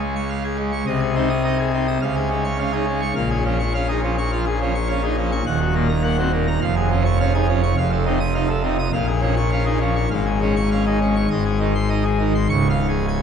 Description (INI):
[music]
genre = classical, organ toccata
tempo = 104 BPM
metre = 4/4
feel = straight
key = Db major from 3.2 s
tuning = A4 = 438 Hz
[part]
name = pipe organ, full organ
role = solo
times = 0.0-13.2 s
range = Db1 to Eb6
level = -18 LUFS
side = equal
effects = none
[sound]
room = wet church reverb, RT60 3.5 s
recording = dark, warm production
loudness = -18 LUFS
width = side -7 dB against mid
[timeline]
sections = 0.0-12.5 A section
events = none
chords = 0.0 Db; 0.9 Ab/C; 2.0 Db; 3.2 Bbm7; 5.5 Ebm; 6.6 Db/F; 7.8 F7; 8.9 Bbm7; 10.1 Db/Ab; 11.3 Ab; 12.5 Db